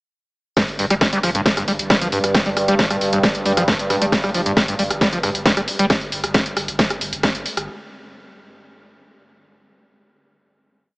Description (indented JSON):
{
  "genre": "driving peak-time techno",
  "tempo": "135 BPM",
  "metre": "4/4",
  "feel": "straight",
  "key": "unclear",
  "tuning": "A4 = 440 Hz",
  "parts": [
    { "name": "screaming distorted acid line", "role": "riff", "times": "0.6-5.9 s", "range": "G2 to G3", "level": "-22 LUFS", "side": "equal", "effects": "distortion, wide subtle chorus, sidechain pumping, dub echo" },
    { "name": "deep dark ambient pad", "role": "drone", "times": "1.7-5.9 s", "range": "G2", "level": "-25 LUFS", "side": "right 1 dB", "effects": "chorus, built-in reverb, sidechain pumping" },
    { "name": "electronic kick drum", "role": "drums", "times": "0.6-7.3 s", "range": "none", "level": "-22 LUFS", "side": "equal", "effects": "none" },
    { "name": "techno drum kit", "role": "drums", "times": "0.6-7.7 s", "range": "hi-hat, rim click, snare drum", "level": "-19 LUFS", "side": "equal", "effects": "sidechain pumping on hats" },
    { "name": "warm sub bass", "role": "bass", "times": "0.7-7.7 s", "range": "G1", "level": "-37 LUFS", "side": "equal", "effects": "sidechain pumping, low-pass filter" }
  ],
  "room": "light reverb",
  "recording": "small speaker sound",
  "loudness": "-16 LUFS",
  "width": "side -26 dB against mid",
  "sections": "0.6-7.7 drop",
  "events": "drop 0.6-7.7",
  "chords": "none",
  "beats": "| 0.57 1.01 1.46 1.90 | 2.35 2.79 3.23 3.68 | 4.12 4.57 5.01 5.46 | 5.90 6.35 6.79 7.24"
}